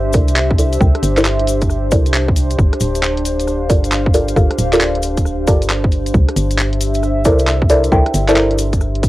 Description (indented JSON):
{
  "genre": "UK garage, two-step garage",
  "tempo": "135 BPM",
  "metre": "4/4",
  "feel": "swing 65% on 16ths",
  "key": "unclear",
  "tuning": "A4 = 440 Hz",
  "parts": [
    { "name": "organ-like FM bass", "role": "bass", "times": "0.0-9.1 s", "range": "D1 to C2", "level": "-18 LUFS", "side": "equal", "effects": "none" },
    { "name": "warbly tape-like pad", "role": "texture", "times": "0.0-9.1 s", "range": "D4 to F5", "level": "-21 LUFS", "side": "equal", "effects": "chorus, built-in reverb, sidechain pumping, cassette tape" },
    { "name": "deep mellow chord stab", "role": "stabs", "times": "0.1-8.4 s", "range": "E4 to G5", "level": "-16 LUFS", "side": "equal", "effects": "chorus, cassette tape, analog delay" },
    { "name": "electronic kick drum", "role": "drums", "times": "0.1-9.1 s", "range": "none", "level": "-14 LUFS", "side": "equal", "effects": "cassette tape" },
    { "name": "garage drum kit", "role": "drums", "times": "0.1-9.1 s", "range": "handclaps, hi-hat, rim click", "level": "-21 LUFS", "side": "equal", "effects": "cassette tape" },
    { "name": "cabasa", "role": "percussion", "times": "0.1-9.1 s", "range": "none", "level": "-30 LUFS", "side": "left 7 dB", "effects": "none" }
  ],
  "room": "little or no reverb",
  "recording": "home recording on cassette",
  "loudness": "-12 LUFS",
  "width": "side -17 dB against mid",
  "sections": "0.0-9.1 A section",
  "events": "filter sweep on synth stab 0.0-9.1",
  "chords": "0.0 C13; 2.6 Gm9; 6.1 C13"
}